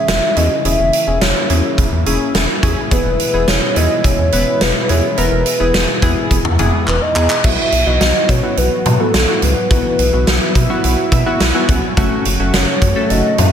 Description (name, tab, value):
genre	synth-pop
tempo	106 BPM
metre	4/4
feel	straight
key	unclear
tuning	A4 = 440 Hz
part	hollow clarinet-like synth lead	melody	0.0-13.5 s	A4 to E5	-18 LUFS	equal	chorus, slapback echo, digital delay
part	warm analog keys	accompaniment	0.0-13.3 s	A3 to G#5	-21 LUFS	left 1 dB	chorus, slapback echo
part	lush unison pad	sustained chords	0.0-13.5 s	B2 to F#4	-23 LUFS	equal	chorus
part	rubbery square bass	bass	0.1-13.5 s	E1 to B2	-17 LUFS	equal	none
part	huge arena drum kit	drums	0.1-13.5 s	crash cymbal, handclaps, hi-hat, kick drum, snare drum, toms	-16 LUFS	equal	none
room	moderate concert hall reverb, RT60 1.9 s, studio ambience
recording	big arena sound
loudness	-12 LUFS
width	side -8 dB against mid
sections	0.0-7.4 A section; 7.4-13.5 B section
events	drum fill 6.9-7.4; synth keys fill 10.8-12.0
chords	0.0 C#m/E; 2.9 E; 7.4 Bsus4; 12.0 F#m